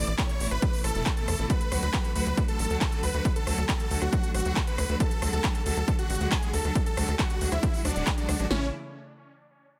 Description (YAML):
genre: uplifting trance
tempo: 137 BPM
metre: 4/4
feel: straight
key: unclear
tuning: A4 = 444 Hz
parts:
  - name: big supersaw lead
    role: melody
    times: 0.0-8.7 s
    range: C#4 to D5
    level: -35 LUFS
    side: equal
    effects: sidechain pumping, dub echo
  - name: clear symphonic string section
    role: sustained chords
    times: 0.0-8.7 s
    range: B2 to F#4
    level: -37 LUFS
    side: equal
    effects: sidechain pumping
  - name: tight sequencer bass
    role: bass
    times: 0.0-8.7 s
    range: D1 to E2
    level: -31 LUFS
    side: equal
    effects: sidechain pumping
  - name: big-room dance drum kit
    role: drums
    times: 0.1-8.5 s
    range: handclaps, hi-hat, rim click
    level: -35 LUFS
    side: equal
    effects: overdrive
  - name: punchy analog drum machine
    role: drums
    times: 0.2-8.6 s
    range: kick drum, snare drum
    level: -30 LUFS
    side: equal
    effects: overdrive
room: little or no reverb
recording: none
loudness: -27 LUFS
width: mono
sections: 0.0-8.5 A section; 8.5-9.8 B section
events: drop 0.0-8.5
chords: 0.0 Asus2; 1.5 D; 8.5 A